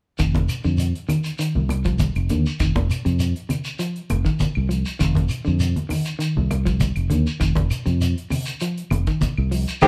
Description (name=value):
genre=afrobeat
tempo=100 BPM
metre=4/4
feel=straight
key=unclear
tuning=A4 = 440 Hz
part: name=electric guitar at the edge of break-up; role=arpeggios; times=0.2-9.9 s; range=C3 to F3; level=-29 LUFS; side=equal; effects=none
part: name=fingered electric bass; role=bass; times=0.2-9.9 s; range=F1 to F2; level=-24 LUFS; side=equal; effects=none
part: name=damped 70s drum kit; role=drums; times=0.2-9.9 s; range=hi-hat, kick drum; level=-30 LUFS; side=equal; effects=none
part: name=claves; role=percussion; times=0.2-9.9 s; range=none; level=-41 LUFS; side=equal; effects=none
part: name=shekere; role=percussion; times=0.2-9.9 s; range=none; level=-32 LUFS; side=equal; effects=none
part: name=congas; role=percussion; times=0.3-9.4 s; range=none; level=-29 LUFS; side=equal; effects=none
part: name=semi-hollow electric guitar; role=stabs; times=9.8-9.9 s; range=Eb3 to G4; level=-12 LUFS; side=equal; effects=none
room=light reverb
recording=band playing live in one room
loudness=-22 LUFS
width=mono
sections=0.2-9.9 A section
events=none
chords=0.2 F7(no3)